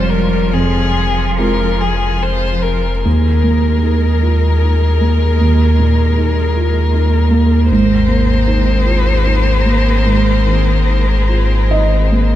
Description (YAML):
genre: neoclassical piano and strings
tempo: 69-80 BPM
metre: 3/4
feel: rubato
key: unclear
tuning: A4 = 440 Hz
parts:
  - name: rich violin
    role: melody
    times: 0.0-12.3 s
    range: Ab4 to C5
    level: -20 LUFS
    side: left 4 dB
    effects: none
  - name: rich cello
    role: second line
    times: 0.0-12.3 s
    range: F3 to Bb3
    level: -25 LUFS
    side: right 5 dB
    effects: none
  - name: felt-muted upright piano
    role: accompaniment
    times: 0.0-12.4 s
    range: Eb2 to Eb5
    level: -17 LUFS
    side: right 3 dB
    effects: none
  - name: rich symphonic string section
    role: sustained chords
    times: 0.0-12.4 s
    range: F3 to Bb4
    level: -24 LUFS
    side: left 1 dB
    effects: none
  - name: saturated sub bass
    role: bass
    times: 0.0-12.4 s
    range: F1 to Eb2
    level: -14 LUFS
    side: equal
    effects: none
room: wet cathedral reverb, RT60 5.5 s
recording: recorded in a church or concert hall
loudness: -11 LUFS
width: side -12 dB against mid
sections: 0.0-3.1 A section; 3.1-12.4 B section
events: none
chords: 0.0 Fm; 3.1 Ebsus4; 7.7 Abadd9